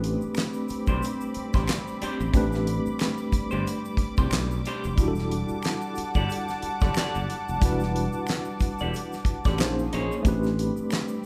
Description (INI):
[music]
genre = R&B, neo-soul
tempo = 91 BPM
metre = 4/4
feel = swing 58% on 16ths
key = A dorian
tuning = A4 = 440 Hz
[part]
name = mellow tine electric piano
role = accompaniment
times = 0.0-11.3 s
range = G3 to C5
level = -33 LUFS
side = equal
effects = medium tremolo
[part]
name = lush unison pad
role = sustained chords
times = 0.0-11.3 s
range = G3 to D6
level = -36 LUFS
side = equal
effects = chorus
[part]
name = sustaining fretless electric bass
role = bass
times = 0.0-10.8 s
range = E1 to C2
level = -33 LUFS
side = equal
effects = none
[part]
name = damped 70s drum kit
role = drums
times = 0.0-11.1 s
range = handclaps, hi-hat, kick drum, snare drum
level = -28 LUFS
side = equal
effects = none
[part]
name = egg shaker and finger snaps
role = percussion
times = 0.2-11.3 s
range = none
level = -47 LUFS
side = equal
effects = none
[part]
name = electric guitar through a small old amp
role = second line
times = 0.9-10.2 s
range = D4 to D5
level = -36 LUFS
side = equal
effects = phaser
[sound]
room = moderate recital hall reverb, RT60 1.4 s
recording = recorded in a church or concert hall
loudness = -27 LUFS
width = mono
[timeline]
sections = 0.0-11.3 A section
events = none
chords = 0.0 Am11; 5.0 Em11; 9.6 Bbm11; 10.2 Am11